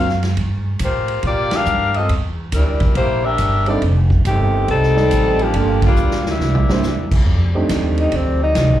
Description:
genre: jazz, big band swing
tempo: 139 BPM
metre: 4/4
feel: swing 66% on 8ths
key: F mixolydian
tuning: A4 = 440 Hz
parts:
  - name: warm saxophone section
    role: melody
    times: 0.0-7.1 s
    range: Eb3 to F5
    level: -18 LUFS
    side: left 2 dB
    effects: slapback echo
  - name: upright bass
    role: bass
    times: 0.0-8.8 s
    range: F1 to Bb2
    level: -18 LUFS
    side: equal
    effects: none
  - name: swinging big-band drum kit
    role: drums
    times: 0.1-8.7 s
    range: crash cymbal, hi-hat, kick drum, ride cymbal, snare drum, toms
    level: -22 LUFS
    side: equal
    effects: none
  - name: warm grand piano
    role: accompaniment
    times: 3.7-8.1 s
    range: G3 to D5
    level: -21 LUFS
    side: right 4 dB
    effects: slapback echo
  - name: mellow trombone section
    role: sustained chords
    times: 7.3-8.8 s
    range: F3 to D5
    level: -28 LUFS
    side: left 1 dB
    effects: none
  - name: breathy tenor saxophone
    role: melody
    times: 8.0-8.8 s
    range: C4 to Eb4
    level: -18 LUFS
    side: left 1 dB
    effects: slapback echo
room: light reverb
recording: live gig heard through the venue's PA, club reverb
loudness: -14 LUFS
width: side -12 dB against mid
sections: 0.0-7.3 A section; 7.3-8.8 B section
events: band accent 1.5, 5.8; drum fill 6.0-6.8; tenor saxophone solo 7.3-8.8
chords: 0.4 Gm7; 2.1 C9 (rootless); 3.8 F13; 5.5 Gm7; 6.4 C9; 7.3 F13

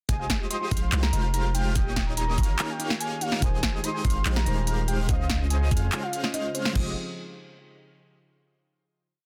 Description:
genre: future bass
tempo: 144 BPM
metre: 4/4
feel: half-time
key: F minor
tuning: A4 = 445 Hz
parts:
  - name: soft octave-layered synth lead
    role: melody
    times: 0.1-6.9 s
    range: C5 to C6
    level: -36 LUFS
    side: equal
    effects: chorus, phaser, cassette tape, sidechain pumping, delay
  - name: airy breathy pad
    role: sustained chords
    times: 0.1-6.9 s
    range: Db3 to C5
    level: -45 LUFS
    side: equal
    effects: none
  - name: airy dreamy lead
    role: arpeggios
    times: 0.1-6.9 s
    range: Eb6 to F6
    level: -43 LUFS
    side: equal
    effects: chorus, sidechain pumping
  - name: thumb-piano-like synth pluck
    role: arpeggios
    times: 0.1-6.9 s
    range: Eb4 to Bb5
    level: -45 LUFS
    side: equal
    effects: none
  - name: supersaw chords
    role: riff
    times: 0.1-6.9 s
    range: Ab3 to F5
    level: -36 LUFS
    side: equal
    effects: sidechain pumping
  - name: long sustained 808-style bass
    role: bass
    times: 0.1-6.9 s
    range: Eb1 to F2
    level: -28 LUFS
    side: equal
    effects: sidechain pumping
  - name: electronic kick drum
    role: drums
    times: 0.1-6.8 s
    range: none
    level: -29 LUFS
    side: equal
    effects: none
  - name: pop drum kit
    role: drums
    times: 0.1-6.8 s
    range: crash cymbal, handclaps, hi-hat, snare drum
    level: -32 LUFS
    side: equal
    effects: none
  - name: soft round pluck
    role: accompaniment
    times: 3.4-6.9 s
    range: Db3 to Eb5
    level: -40 LUFS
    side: equal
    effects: chorus, cassette tape, sidechain pumping, delay
room: little or no reverb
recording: dense, heavily limited modern master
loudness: -26 LUFS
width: mono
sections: 0.1-6.8 drop; 6.8-8.4 final chord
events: drop 0.1-6.8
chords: 0.1 Fm9; 1.8 Eb7; 3.4 Abmaj7/Eb; 5.1 Dbmaj9; 6.8 Fm9

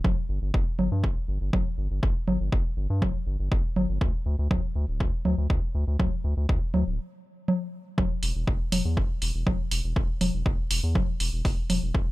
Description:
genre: melodic techno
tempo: 121 BPM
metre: 4/4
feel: straight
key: E minor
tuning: A4 = 439 Hz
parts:
  - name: round analog bass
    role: bass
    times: 0.0-12.0 s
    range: D1 to G2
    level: -27 LUFS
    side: equal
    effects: sidechain pumping
  - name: electronic congas and hi-hat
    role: drums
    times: 0.0-11.8 s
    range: none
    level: -28 LUFS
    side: equal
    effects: none
  - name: electronic kick drum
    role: drums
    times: 0.0-12.0 s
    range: none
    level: -26 LUFS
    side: equal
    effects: none
room: little or no reverb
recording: none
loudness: -24 LUFS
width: side -18 dB against mid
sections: 0.0-12.1 A section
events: break 7.0-8.0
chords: none

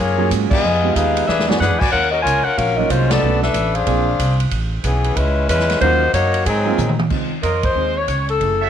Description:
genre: jazz, big band swing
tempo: 185 BPM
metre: 4/4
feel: swing 63% on 8ths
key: Db major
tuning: A4 = 440 Hz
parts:
  - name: clear saxophone section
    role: melody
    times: 0.0-8.7 s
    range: E3 to G#5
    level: -18 LUFS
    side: left 3 dB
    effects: none
  - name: upright bass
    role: bass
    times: 0.0-8.7 s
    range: Gb1 to Bb2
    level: -20 LUFS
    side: right 1 dB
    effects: none
  - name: clear grand piano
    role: accompaniment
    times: 0.2-8.6 s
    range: Gb3 to Ab4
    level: -24 LUFS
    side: right 13 dB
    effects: none
  - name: swinging big-band drum kit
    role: drums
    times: 0.3-8.5 s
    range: crash cymbal, hi-hat, kick drum, ride cymbal, snare drum, toms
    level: -23 LUFS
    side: right 1 dB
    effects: none
  - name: clear trumpet section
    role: stabs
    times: 7.4-8.7 s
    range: F4 to Fb5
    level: -24 LUFS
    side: right 9 dB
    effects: slapback echo
room: light reverb, small room ambience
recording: 1960s-style stereo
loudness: -15 LUFS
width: side -9 dB against mid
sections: 0.0-7.1 A section; 7.1-8.7 B section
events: band accent 0.5, 3.1, 7.6; drum fill 1.3-1.6, 6.8-7.1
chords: 0.0 Gbmaj9; 0.6 Fm7b5; 1.3 E9; 1.9 Ebm9; 3.2 Cbm7; 3.9 Bb9; 4.5 Amaj9; 5.8 Ebm7; 6.5 Ab13; 7.1 Dbmaj9

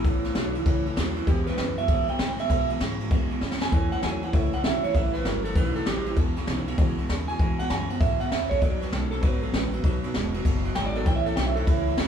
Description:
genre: rockabilly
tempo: 196 BPM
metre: 4/4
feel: swing 65% on 8ths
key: E major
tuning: A4 = 444 Hz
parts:
  - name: electric guitar through a small old amp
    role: melody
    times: 0.0-12.0 s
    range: E4 to G#5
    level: -29 LUFS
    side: right 5 dB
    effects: none
  - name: picked steel-string acoustic guitar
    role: accompaniment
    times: 0.0-12.1 s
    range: E2 to F#4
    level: -35 LUFS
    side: left 5 dB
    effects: none
  - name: electric guitar through a small old amp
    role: riff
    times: 0.0-12.1 s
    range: E2 to G#3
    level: -31 LUFS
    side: right 3 dB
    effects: none
  - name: upright bass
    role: bass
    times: 0.0-12.1 s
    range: E1 to B2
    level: -31 LUFS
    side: equal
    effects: none
  - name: jazz brush drum kit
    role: drums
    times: 0.0-12.1 s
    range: kick drum, ride cymbal, snare drum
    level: -25 LUFS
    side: left 1 dB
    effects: none
room: moderate large studio reverb, RT60 1.2 s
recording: band playing live in one room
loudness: -23 LUFS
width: side -8 dB against mid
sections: 0.0-12.1 A section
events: clean electric guitar solo 0.0-12.1; drum fill 3.4-3.7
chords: 0.1 A; 1.3 E; 3.7 A; 4.9 Am7; 6.2 E; 8.6 B; 11.1 A

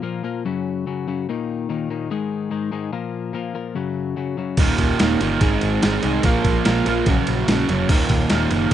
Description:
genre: indie rock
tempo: 145 BPM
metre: 4/4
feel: straight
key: Eb dorian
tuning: A4 = 440 Hz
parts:
  - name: twelve-string electric guitar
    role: riff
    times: 0.0-8.7 s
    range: Eb2 to Bb3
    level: -24 LUFS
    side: left 6 dB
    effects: none
  - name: string machine, cellos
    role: sustained chords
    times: 4.6-8.7 s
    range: Bb3 to Gb5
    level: -30 LUFS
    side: equal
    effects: none
  - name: crunchy overdriven guitar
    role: riff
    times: 4.6-8.7 s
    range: Eb2 to Bb3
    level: -20 LUFS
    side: right 7 dB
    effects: wide subtle chorus
  - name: picked electric bass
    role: bass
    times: 4.6-8.7 s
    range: Eb1 to C2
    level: -24 LUFS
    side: equal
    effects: none
  - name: boom bap sampler-style drum kit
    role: drums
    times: 4.6-8.7 s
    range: crash cymbal, kick drum, ride cymbal, snare drum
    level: -21 LUFS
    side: equal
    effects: overdrive
room: light reverb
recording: rough home demo mix, nothing above 10.7 kHz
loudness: -19 LUFS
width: side -10 dB against mid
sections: 0.0-8.7 A section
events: none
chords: 0.4 Gb5; 1.3 Eb5; 2.1 Ab5; 2.9 Bb5; 3.8 Gb5; 4.6 Ebm7; 5.4 Ab7; 6.2 Bbm7; 7.1 Gbmaj7/Bb; 7.9 Ebm7

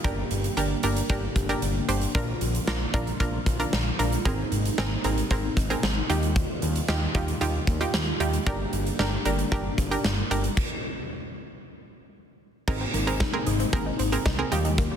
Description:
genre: synth-pop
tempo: 114 BPM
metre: 4/4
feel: straight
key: unclear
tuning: A4 = 440 Hz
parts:
  - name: analog pluck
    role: accompaniment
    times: 0.0-15.0 s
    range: C4 to C5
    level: -30 LUFS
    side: right 3 dB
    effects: chorus
  - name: phased analog pad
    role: sustained chords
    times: 0.0-15.0 s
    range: C3 to G4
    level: -33 LUFS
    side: left 1 dB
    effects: phaser, chorus
  - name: fat analog bass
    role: bass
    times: 0.0-14.9 s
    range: G1 to Eb2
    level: -28 LUFS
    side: equal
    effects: none
  - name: huge arena drum kit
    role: drums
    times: 0.0-14.9 s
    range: crash cymbal, hi-hat, kick drum, snare drum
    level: -28 LUFS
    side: equal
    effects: soft clipping on kick
  - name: analog pluck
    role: arpeggios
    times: 12.7-15.0 s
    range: G3 to Eb4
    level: -35 LUFS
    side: left 3 dB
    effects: chorus, ping-pong delay
room: light reverb, small room ambience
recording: dense, heavily limited modern master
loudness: -23 LUFS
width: side -8 dB against mid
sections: 0.0-12.7 A section; 12.7-15.0 B section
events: stop 10.6-12.7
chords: 0.0 Gm; 2.1 Bb; 4.3 Abadd9; 6.1 Ebadd9; 8.5 Gm; 10.6 N.C.; 12.7 Abadd9

